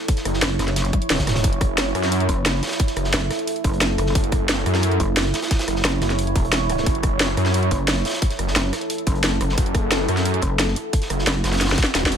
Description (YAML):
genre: dark technical drum and bass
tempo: 177 BPM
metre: 4/4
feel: straight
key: F# minor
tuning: A4 = 440 Hz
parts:
  - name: deep dark ambient pad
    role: texture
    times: 0.0-12.2 s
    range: E4 to C#5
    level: -26 LUFS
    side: right 2 dB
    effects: chorus, built-in reverb, sidechain pumping
  - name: crunchy breakbeat drum kit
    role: drums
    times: 0.1-12.2 s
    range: hi-hat, snare drum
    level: -30 LUFS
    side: equal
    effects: high-pass filter on hats, small room ambience, high-pass filter on snare, high-pass filter on room
  - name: drum and bass drum kit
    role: drums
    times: 0.1-12.2 s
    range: hi-hat, rim click, snare drum, toms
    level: -23 LUFS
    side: equal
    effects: small room ambience
  - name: electronic kick drum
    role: drums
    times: 0.1-12.1 s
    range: none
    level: -21 LUFS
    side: equal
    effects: small room ambience
  - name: wide detuned saw bass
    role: bass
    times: 0.3-12.2 s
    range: E1 to F#2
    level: -22 LUFS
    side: equal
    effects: chorus, tube saturation, sidechain pumping
  - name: pulsing pluck wobble bass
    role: bass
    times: 0.4-11.8 s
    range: E1 to F#1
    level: -23 LUFS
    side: equal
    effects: chorus, tube saturation
room: light reverb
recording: none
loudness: -18 LUFS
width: side -8 dB against mid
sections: 0.0-12.2 A section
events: drum fill 0.9-1.4, 11.6-12.2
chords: 0.0 F#m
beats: | 0.09 0.42 0.76 1.10 | 1.44 1.78 2.12 2.46 | 2.80 3.13 3.47 3.81 | 4.15 4.49 4.83 5.17 | 5.51 5.85 6.19 6.53 | 6.86 7.20 7.54 7.88 | 8.22 8.56 8.90 9.24 | 9.58 9.91 10.25 10.59 | 10.93 11.27 11.61 11.95